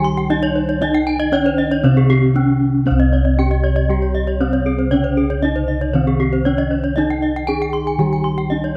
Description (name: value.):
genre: gamelan.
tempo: 117 BPM.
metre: 4/4.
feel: straight.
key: C pelog.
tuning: A4 = 440 Hz.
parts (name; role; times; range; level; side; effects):
gamelan-type bronze metallophone; melody; 0.0-8.8 s; C4 to Ab4-20c; -22 LUFS; equal; none.
gamelan-type bronze metallophone; accompaniment; 0.0-8.8 s; C3 to G3-30c; -27 LUFS; equal; none.
gamelan-type bronze metallophone; arpeggios; 0.0-8.6 s; G4-30c to C6; -27 LUFS; equal; none.
gamelan-type bronze metallophone; arpeggios; 0.0-8.8 s; Ab4-20c to Ab5-20c; -28 LUFS; equal; none.
gamelan-type bossed gongs; bass; 0.0-8.8 s; C2 to Eb4-30c; -21 LUFS; equal; none.
room: light reverb.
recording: close, detailed microphones.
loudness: -17 LUFS.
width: mono.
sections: 0.0-8.8 A section.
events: none.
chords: none.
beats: 0.30 | 0.81 1.33 1.84 2.35 | 2.87 3.38 3.89 4.40 | 4.92 5.43 5.94 6.46 | 6.97 7.48 7.99 8.51.